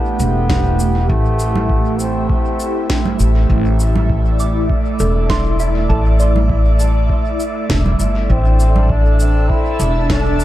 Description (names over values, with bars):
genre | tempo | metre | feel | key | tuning
ambient dub | 100 BPM | 4/4 | swing 53% on 16ths | A minor | A4 = 437 Hz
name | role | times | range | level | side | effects
clear trombone | melody | 0.0-3.2, 8.3-10.4 s | A3 to E4 | -23 LUFS | equal | tape echo
airy breathy pad | sustained chords | 0.0-10.4 s | A3 to A5 | -21 LUFS | right 1 dB | chorus, phaser
soft synth bell | arpeggios | 0.0-10.4 s | E4 to D6 | -26 LUFS | right 2 dB | chorus, phaser, tape echo
wind-like tuned noise texture | texture | 0.0-10.4 s | E5 | -29 LUFS | right 3 dB | built-in reverb
upright bass | bass | 0.2-10.4 s | E1 to A1 | -15 LUFS | equal | none
electronic shaker, snare drum and congas | drums | 0.2-10.4 s | none | -24 LUFS | right 2 dB | overdrive, small room reverb, dub echo
electronic kick drum | drums | 0.5-10.2 s | none | -20 LUFS | equal | small room reverb
room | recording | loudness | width
light reverb, digital ambience | none | -13 LUFS | side -14 dB against mid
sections
0.0-10.4 A section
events
none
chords
0.0 Am7; 8.3 Dsus2